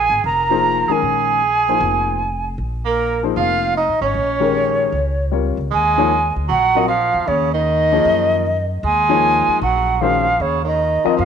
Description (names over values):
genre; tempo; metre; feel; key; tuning
jazz; 154 BPM; 4/4; swing 65% on 8ths; Bb dorian, Eb dorian from 5.7 s; A4 = 442 Hz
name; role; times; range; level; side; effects
hollow concert flute; melody; 0.0-11.2 s; Bb4 to Bb5; -17 LUFS; right 1 dB; none
warm tenor saxophone; second line; 0.0-11.2 s; Db3 to Bb4; -22 LUFS; right 11 dB; none
upright bass; bass; 0.0-11.2 s; F1 to Gb2; -24 LUFS; equal; none
warm upright piano; accompaniment; 0.5-11.2 s; Eb3 to Eb5; -21 LUFS; left 12 dB; none
room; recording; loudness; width
moderate echo chamber reverb, RT60 1.7 s, studio ambience; 1960s-style stereo with parts hard left and right; -15 LUFS; side -7 dB against mid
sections
0.0-5.7 A section; 5.7-11.2 B section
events
none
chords
0.0 Bbm9; 5.7 Ebm9